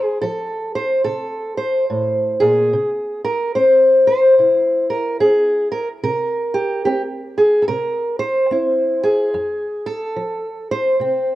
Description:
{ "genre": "acoustic country blues, solo or duo", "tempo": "72 BPM", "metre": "4/4", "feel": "swing 63% on 8ths", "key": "unclear", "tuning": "A4 = 441 Hz", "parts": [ { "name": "fingerpicked old ladder-braced acoustic guitar", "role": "solo", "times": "0.0-11.4 s", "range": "F2 to C5", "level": "-16 LUFS", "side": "equal", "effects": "cassette tape" } ], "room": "light reverb, studio reverb", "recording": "home recording on cassette", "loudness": "-15 LUFS", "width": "side -15 dB against mid", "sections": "0.0-11.4 A section", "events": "none", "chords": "0.0 F; 2.7 C7; 9.3 F" }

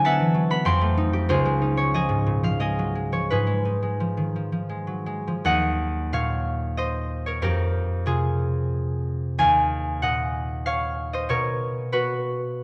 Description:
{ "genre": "classical, solo harp piece", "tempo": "76-99 BPM", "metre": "3/4", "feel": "rubato", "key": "Eb dorian", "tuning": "A4 = 440 Hz", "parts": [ { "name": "concert harp", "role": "solo", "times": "0.0-12.6 s", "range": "Db2 to C6", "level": "-24 LUFS", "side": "equal", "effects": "none" } ], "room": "moderate recital hall reverb, RT60 1.8 s", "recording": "none", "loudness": "-24 LUFS", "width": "mono", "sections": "0.0-5.4 A section; 5.4-12.6 B section", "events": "none", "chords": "0.0 D13; 0.7 F13; 1.3 Dbadd9; 3.3 Abm6; 5.4 Ebm6; 7.4 Fm11; 9.4 Ebm11; 11.3 Bmaj9" }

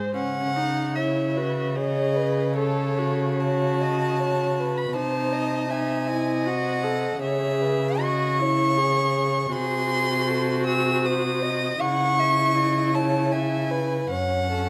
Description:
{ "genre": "classical, slow romantic movement for string quartet", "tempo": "69-81 BPM", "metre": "3/4", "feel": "rubato", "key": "C# minor", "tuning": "A4 = 436 Hz", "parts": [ { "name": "dark violin", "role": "second line", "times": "0.0-14.7 s", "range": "G#4 to F#5", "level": "-31 LUFS", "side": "equal", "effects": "none" }, { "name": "warm viola", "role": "accompaniment", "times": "0.0-14.7 s", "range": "C#4 to B#4", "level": "-30 LUFS", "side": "equal", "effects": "none" }, { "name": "warm violin", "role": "melody", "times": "0.2-14.7 s", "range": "C#5 to E6", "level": "-29 LUFS", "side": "equal", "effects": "none" }, { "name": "warm cello", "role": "bass", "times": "0.2-14.7 s", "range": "F#2 to C#3", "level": "-29 LUFS", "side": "equal", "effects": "none" } ], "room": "light reverb", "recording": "close, detailed microphones", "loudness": "-24 LUFS", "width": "mono", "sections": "0.2-14.7 A section", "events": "none", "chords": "0.2 C#m; 2.6 B7sus2/C#; 5.0 Cdim7; 7.2 C#m; 9.5 G#7/B#; 11.8 C#m; 14.1 F#m" }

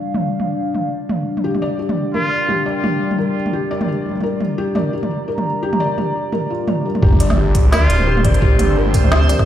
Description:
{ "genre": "half-time drum and bass", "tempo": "172 BPM", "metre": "4/4", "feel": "swing 57% on 16ths, half-time", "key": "G minor", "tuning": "A4 = 441 Hz", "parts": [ { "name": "dark analog pad", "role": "sustained chords", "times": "0.0-9.5 s", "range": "G3 to Bb5", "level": "-22 LUFS", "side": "left 1 dB", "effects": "chorus, phaser, sidechain pumping" }, { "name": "organic electronic drum kit", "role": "drums", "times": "0.1-9.5 s", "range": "hi-hat, snare drum, tambourine, toms", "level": "-22 LUFS", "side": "right 1 dB", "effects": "overdrive, low-pass filter on toms, low-pass filter on hats, low-pass filter on snare, low-pass filter on perc" }, { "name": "felt-muted upright piano", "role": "arpeggios", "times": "1.4-9.5 s", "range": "G3 to D5", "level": "-23 LUFS", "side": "left 2 dB", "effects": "ping-pong delay" }, { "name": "trumpet with straight mute", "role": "melody", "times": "2.1-2.6, 7.7-8.2 s", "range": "F4", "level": "-23 LUFS", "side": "equal", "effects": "ping-pong delay" }, { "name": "phased detuned saw bass", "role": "bass", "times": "7.0-9.3 s", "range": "D1 to D2", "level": "-16 LUFS", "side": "equal", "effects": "phaser" }, { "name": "electronic kick drum", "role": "drums", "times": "7.0-9.5 s", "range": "none", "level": "-15 LUFS", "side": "equal", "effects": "none" }, { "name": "sub drop", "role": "sound effects", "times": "7.0-8.4 s", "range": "none", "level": "-21 LUFS", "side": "equal", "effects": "none" }, { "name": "backwards swelling texture", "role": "texture", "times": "7.4-9.5 s", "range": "C4 to C5", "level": "-26 LUFS", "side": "right 1 dB", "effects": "built-in reverb" } ], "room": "light reverb", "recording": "played on a big sound system in a bare room, large studio reverb", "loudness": "-15 LUFS", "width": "side -11 dB against mid", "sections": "0.0-7.0 A section; 7.0-9.5 B section", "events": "drop 7.0-9.5; impact 7.0-8.4", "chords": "0.0 G5" }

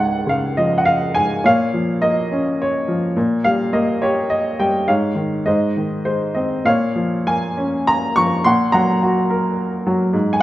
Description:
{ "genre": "classical, lyrical solo piano", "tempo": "103 BPM", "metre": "3/4", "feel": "uneven beats, rubato", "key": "unclear", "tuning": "A4 = 440 Hz", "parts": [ { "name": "clear upright piano", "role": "solo", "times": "0.0-10.4 s", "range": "Db2 to Db6", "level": "-16 LUFS", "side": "equal", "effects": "none" } ], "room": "moderate recital hall reverb, RT60 1.7 s", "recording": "none", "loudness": "-16 LUFS", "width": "side -15 dB against mid", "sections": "0.0-10.4 A section", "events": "none", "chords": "0.0 Db; 1.4 Bbm; 3.2 Bbm6; 4.9 Absus4; 5.5 Ab; 6.7 Bbm; 8.4 Gb/Bb" }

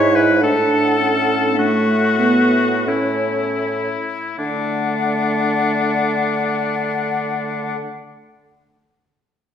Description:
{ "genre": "classical, slow romantic movement for wind quintet", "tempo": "38-55 BPM", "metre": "3/4", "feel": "rubato", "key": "D major", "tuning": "A4 = 439 Hz", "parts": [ { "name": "bright silver concert flute", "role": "melody", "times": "0.0-7.8 s", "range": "C#5 to F#5", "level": "-25 LUFS", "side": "left 6 dB", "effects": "none" }, { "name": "clear oboe", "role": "second line", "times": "0.0-7.8 s", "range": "D4 to C#5", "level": "-20 LUFS", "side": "left 3 dB", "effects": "none" }, { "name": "mellow French horn", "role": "accompaniment", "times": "0.0-7.8 s", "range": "A3 to E4", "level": "-24 LUFS", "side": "left 1 dB", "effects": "none" }, { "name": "mellow clarinet", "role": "accompaniment", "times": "0.0-7.8 s", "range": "A3 to E4", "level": "-22 LUFS", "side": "right 3 dB", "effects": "none" }, { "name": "mellow bassoon", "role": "bass", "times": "0.0-7.8 s", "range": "G#2 to D3", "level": "-22 LUFS", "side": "right 2 dB", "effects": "none" } ], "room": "wet recital hall reverb, RT60 1.4 s", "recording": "heard from further back in the room", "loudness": "-16 LUFS", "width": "side -8 dB against mid", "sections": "0.0-4.4 A section; 4.4-8.8 B section", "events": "slowing down 0.0-4.4", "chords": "0.4 Asus4; 2.9 A; 4.4 D" }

